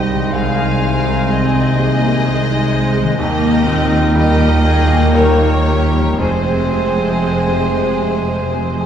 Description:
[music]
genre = cinematic, emotional film score for orchestra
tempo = 56-64 BPM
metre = 3/4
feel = rubato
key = F minor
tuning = A4 = 439 Hz
[part]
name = rich studio violin section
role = melody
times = 0.0-8.9 s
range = C5 to F5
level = -23 LUFS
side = left 1 dB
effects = none
[part]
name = bright clarinet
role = second line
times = 0.0-8.9 s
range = C4 to Eb4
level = -25 LUFS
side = equal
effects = none
[part]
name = mellow cor anglais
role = second line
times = 0.0-8.9 s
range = Bb4 to C5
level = -26 LUFS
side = right 3 dB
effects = none
[part]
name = rich studio violin section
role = second line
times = 0.0-8.9 s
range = G4 to Bb4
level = -27 LUFS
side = left 3 dB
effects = none
[part]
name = silver concert flute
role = second line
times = 0.0-8.9 s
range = G5 to Ab5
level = -25 LUFS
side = left 2 dB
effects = none
[part]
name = clear baby grand piano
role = accompaniment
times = 0.0-8.9 s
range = C2 to C5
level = -22 LUFS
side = left 2 dB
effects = none
[part]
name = warm studio viola section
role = accompaniment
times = 0.0-8.9 s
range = Ab3 to C4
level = -22 LUFS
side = right 2 dB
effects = none
[part]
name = mellow French horn section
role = sustained chords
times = 0.0-8.9 s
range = C3 to Bb4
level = -23 LUFS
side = left 2 dB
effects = none
[part]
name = concert harp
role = arpeggios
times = 0.0-8.9 s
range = C3 to C5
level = -23 LUFS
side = left 3 dB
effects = none
[part]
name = warm studio cello section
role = bass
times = 0.0-8.9 s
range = C2 to F2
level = -20 LUFS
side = right 2 dB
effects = none
[part]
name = warm studio double bass section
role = bass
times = 0.0-8.9 s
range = F1 to Eb2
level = -20 LUFS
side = right 3 dB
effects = none
[sound]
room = wet recital hall reverb, RT60 1.6 s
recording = recorded in a church or concert hall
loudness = -12 LUFS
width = side -8 dB against mid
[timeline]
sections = 0.0-8.9 A section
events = none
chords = 0.3 Ab/C; 3.2 Eb; 6.2 Fm

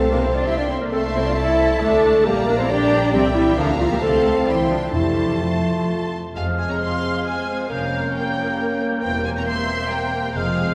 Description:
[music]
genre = quick classical-period movement for symphony orchestra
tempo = 125-139 BPM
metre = 3/4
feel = rubato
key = F major, F minor from 6.4 s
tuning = A4 = 440 Hz
[part]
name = rich studio violin section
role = melody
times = 0.0-10.7 s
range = E5 to C6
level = -33 LUFS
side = equal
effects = none
[part]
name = clear clarinet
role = second line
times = 0.0-10.7 s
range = D4 to E5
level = -32 LUFS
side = equal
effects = none
[part]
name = rich studio violin section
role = second line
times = 0.0-10.7 s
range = Ab4 to C6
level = -33 LUFS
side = equal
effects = none
[part]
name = rich studio viola section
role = accompaniment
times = 0.0-10.7 s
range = C3 to Bb4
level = -30 LUFS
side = equal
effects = none
[part]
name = warm bassoon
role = accompaniment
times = 0.0-10.7 s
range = G3 to C4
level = -29 LUFS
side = equal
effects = none
[part]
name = mellow French horn section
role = sustained chords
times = 0.0-10.7 s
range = Ab3 to E5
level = -25 LUFS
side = equal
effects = none
[part]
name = dark studio double bass section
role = bass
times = 0.0-10.7 s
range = E1 to F2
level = -30 LUFS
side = equal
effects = none
[part]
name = rich studio cello section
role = bass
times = 0.0-10.7 s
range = E2 to E4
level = -28 LUFS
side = equal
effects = none
[part]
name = timpani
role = percussion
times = 0.0-0.2, 4.9-5.6 s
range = F2 to C3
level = -33 LUFS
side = equal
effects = none
[part]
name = mellow concert flute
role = second line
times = 6.3-10.7 s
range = F6 to G6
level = -29 LUFS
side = equal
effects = none
[sound]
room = wet church reverb, RT60 3.3 s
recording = recorded in a church or concert hall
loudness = -20 LUFS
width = mono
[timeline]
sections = 0.0-6.4 A section; 6.4-10.7 B section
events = none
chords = 0.5 C; 0.9 Am/C; 1.8 D5; 2.3 Gm/Bb; 3.1 C; 3.6 Bb/D; 4.0 F/C; 4.5 C; 4.9 F; 6.4 Fm; 7.7 Gm7b5/F; 9.0 C7/E

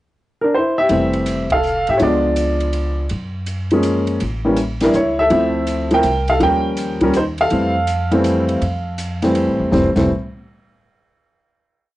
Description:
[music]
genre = jazz piano trio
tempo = 163 BPM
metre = 3/4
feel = swing 66% on 8ths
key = F major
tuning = A4 = 441 Hz
[part]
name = warm baby grand piano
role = melody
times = 0.4-10.1 s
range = E3 to G5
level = -16 LUFS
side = equal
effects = none
[part]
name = upright bass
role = bass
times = 0.9-10.1 s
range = F1 to A2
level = -23 LUFS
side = equal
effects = none
[part]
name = open jazz drum kit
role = drums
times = 0.9-10.0 s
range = crash cymbal, hi-hat, kick drum, ride cymbal, snare drum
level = -30 LUFS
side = right 1 dB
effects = cassette tape
[sound]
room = moderate small room reverb, RT60 0.5 s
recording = home recording on cassette, nothing above 10.5 kHz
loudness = -15 LUFS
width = side -16 dB against mid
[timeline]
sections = 0.0-0.9 pickup bar; 0.9-9.7 A section; 9.7-10.8 final chord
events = band accent 1.4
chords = 0.0 D7sus2 (rootless); 0.9 Fmaj7; 2.0 Db7b9; 3.1 Gbmaj7; 4.2 A7b9; 5.3 Dm9; 6.4 Eb9; 7.5 Fmaj7

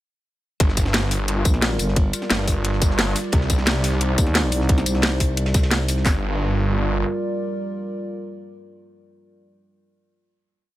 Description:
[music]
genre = dark technical drum and bass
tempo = 176 BPM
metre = 4/4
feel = straight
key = G minor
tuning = A4 = 440 Hz
[part]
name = dark analog pad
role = sustained chords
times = 0.6-9.5 s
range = G3 to D5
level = -28 LUFS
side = right 1 dB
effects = chorus, sidechain pumping
[part]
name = snarling distorted saw bass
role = bass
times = 0.6-7.0 s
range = G1 to C2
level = -22 LUFS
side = equal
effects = distortion, sidechain pumping
[part]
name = cloth-damped thuddy drum kit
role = drums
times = 0.6-6.0 s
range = ride cymbal, snare drum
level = -35 LUFS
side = right 1 dB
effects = high-pass filter on cymbals, high-pass filter on snare, high-pass filter on room
[part]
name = drum and bass drum kit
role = drums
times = 0.6-6.1 s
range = handclaps, kick drum, snare drum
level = -19 LUFS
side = equal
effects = overdrive
[part]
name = drum and bass drum kit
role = drums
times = 0.6-6.0 s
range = hi-hat, snare drum, tambourine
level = -22 LUFS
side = equal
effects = overdrive
[part]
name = growling FM bass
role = bass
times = 1.5-2.1, 4.2-6.0 s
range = G1 to Eb2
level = -22 LUFS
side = equal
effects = none
[sound]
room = little or no reverb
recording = none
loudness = -18 LUFS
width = side -15 dB against mid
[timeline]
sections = 0.6-6.1 drop; 6.1-8.8 final chord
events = drop 0.6-6.1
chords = 0.6 Gm7; 3.3 Cmadd9; 6.1 Gm7

